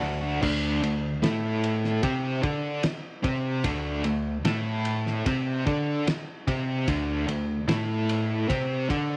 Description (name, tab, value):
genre	psychedelic rock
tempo	74 BPM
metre	4/4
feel	straight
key	unclear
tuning	A4 = 440 Hz
part	overdriven electric guitar	riff	0.0-9.2 s	D3 to D5	-31 LUFS	equal	tremolo
part	picked electric bass	bass	0.0-9.2 s	D2 to D3	-31 LUFS	equal	none
part	cloth-damped thuddy drum kit	drums	0.4-9.1 s	crash cymbal, kick drum, ride cymbal, snare drum	-33 LUFS	equal	none
room	studio ambience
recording	none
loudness	-27 LUFS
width	mono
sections	0.4-9.2 A section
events	none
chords	0.4 D5; 1.2 A5; 2.0 D5; 4.5 A5; 5.3 D5; 7.7 A5; 8.5 D5